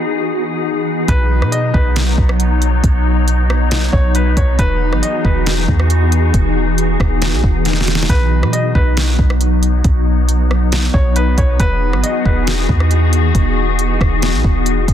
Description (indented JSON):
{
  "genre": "hip hop, atmospheric cloud-rap",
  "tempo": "137 BPM",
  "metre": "4/4",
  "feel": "half-time",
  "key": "B major",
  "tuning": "A4 = 438 Hz",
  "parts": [
    { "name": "glassy FM pad", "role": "sustained chords", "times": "0.0-14.9 s", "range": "E3 to G#4", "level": "-18 LUFS", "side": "left 2 dB", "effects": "ensemble chorus, built-in reverb, sidechain pumping" },
    { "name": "felt-muted upright piano", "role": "melody", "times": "1.1-5.5, 8.1-12.5 s", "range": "B4 to D#5", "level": "-22 LUFS", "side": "equal", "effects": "low-pass filter, tape echo" },
    { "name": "soft 808-style bass", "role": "bass", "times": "1.1-14.9 s", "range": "E1 to B2", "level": "-15 LUFS", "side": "equal", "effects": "none" },
    { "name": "smooth R&B drum kit", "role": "drums", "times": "1.1-14.9 s", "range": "hi-hat, kick drum, rim click, snare drum", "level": "-16 LUFS", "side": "equal", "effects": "none" }
  ],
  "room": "little or no reverb",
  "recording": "dense, heavily limited modern master",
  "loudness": "-12 LUFS",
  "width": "side -10 dB against mid",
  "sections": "0.0-1.1 A section; 1.1-14.9 B section",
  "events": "break 0.0-1.1; drum fill 7.7-8.1",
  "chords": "0.0 Emaj7; 1.1 B; 4.6 Emaj7; 8.1 B; 11.6 Emaj7"
}